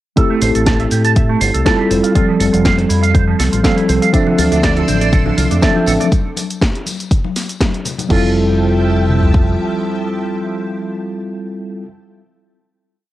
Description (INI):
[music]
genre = nu-disco, nu disco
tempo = 121 BPM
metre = 4/4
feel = swing 54% on 16ths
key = F major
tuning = A4 = 440 Hz
[part]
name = mellow tine electric piano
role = accompaniment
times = 0.2-11.9 s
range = F3 to E5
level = -16 LUFS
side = equal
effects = medium stereo tremolo, sidechain pumping, analog delay
[part]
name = electric guitar with an envelope filter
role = riff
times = 0.2-8.3 s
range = D3 to A5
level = -20 LUFS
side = right 8 dB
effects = lush chorus, analog delay
[part]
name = house drum kit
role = drums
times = 0.2-9.5 s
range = kick drum, toms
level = -15 LUFS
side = equal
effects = cassette tape
[part]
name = house drum kit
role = drums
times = 0.2-8.2 s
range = cabasa, crash cymbal, hi-hat, snare drum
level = -21 LUFS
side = equal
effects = cassette tape
[part]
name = fingered electric bass with an envelope filter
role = bass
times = 0.4-9.6 s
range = F1 to A2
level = -16 LUFS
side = equal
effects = tube saturation
[part]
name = string machine, full ensemble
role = sustained chords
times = 4.1-11.8 s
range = F3 to E6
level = -25 LUFS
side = equal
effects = phaser, ensemble chorus, sidechain pumping
[part]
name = soft round pluck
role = arpeggios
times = 4.1-8.3 s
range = D3 to A3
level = -26 LUFS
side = right 6 dB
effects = none
[part]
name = tambourine and congas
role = percussion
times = 4.1-8.1 s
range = none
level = -25 LUFS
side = left 8 dB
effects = none
[sound]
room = light reverb, digital ambience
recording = home recording on cassette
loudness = -12 LUFS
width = side -15 dB against mid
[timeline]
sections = 0.2-8.1 drop; 8.1-12.1 final chord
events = drop 0.2-8.1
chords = 0.2 Am7; 1.9 Fmaj9; 4.1 Dm9; 6.1 N.C.; 8.1 Fmaj9